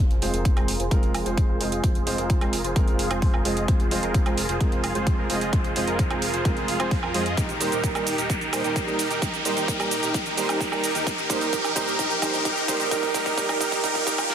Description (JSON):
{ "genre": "EDM, festival progressive house", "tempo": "130 BPM", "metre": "4/4", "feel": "straight", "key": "F minor", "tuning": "A4 = 440 Hz", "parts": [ { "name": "supersaw chords", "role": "riff", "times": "0.0-14.3 s", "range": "Eb4 to F5", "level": "-27 LUFS", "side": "right 1 dB", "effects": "sidechain pumping, low-pass filter, dub echo" }, { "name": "wide detuned saw bass", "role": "bass", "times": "0.0-14.3 s", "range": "Eb1 to F2", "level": "-35 LUFS", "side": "equal", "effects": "chorus, sidechain pumping" }, { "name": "riser and swell", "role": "sound effects", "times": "2.0-14.3 s", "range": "none", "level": "-31 LUFS", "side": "equal", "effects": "none" }, { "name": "pop drum kit", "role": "drums", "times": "0.1-14.3 s", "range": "hi-hat, shaker, snare drum, woodblock", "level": "-30 LUFS", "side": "right 3 dB", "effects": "small room reverb" }, { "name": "dark baby grand piano", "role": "accompaniment", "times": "0.2-14.3 s", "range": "G3 to C5", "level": "-29 LUFS", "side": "right 3 dB", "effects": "sidechain pumping, dub echo" }, { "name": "electronic kick drum", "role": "drums", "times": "0.5-14.3 s", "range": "none", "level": "-24 LUFS", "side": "equal", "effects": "small room reverb" } ], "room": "moderate lush hall reverb, RT60 2.2 s", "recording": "dense, heavily limited modern master, high-pass filter", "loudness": "-21 LUFS", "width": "side -8 dB against mid", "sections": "0.0-14.3 A section", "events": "build-up 0.0-14.3; filter sweep on supersaw synth 0.0-14.3; filter sweep 0.0-14.3; riser 2.0-14.3; drum fill 7.4-14.3; swell 13.8-14.3", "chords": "0.0 Fm; 7.4 Eb; 11.1 Bbsus2", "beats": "0.45 0.91 1.38 | 1.84 2.30 2.76 3.22 | 3.68 4.14 4.61 5.07 | 5.53 5.99 6.45 6.91 | 7.38 7.84 8.30 8.76 | 9.22 9.68 10.14 10.61 | 11.07 11.53 11.99 12.45 | 12.91 13.38 13.84 14.30" }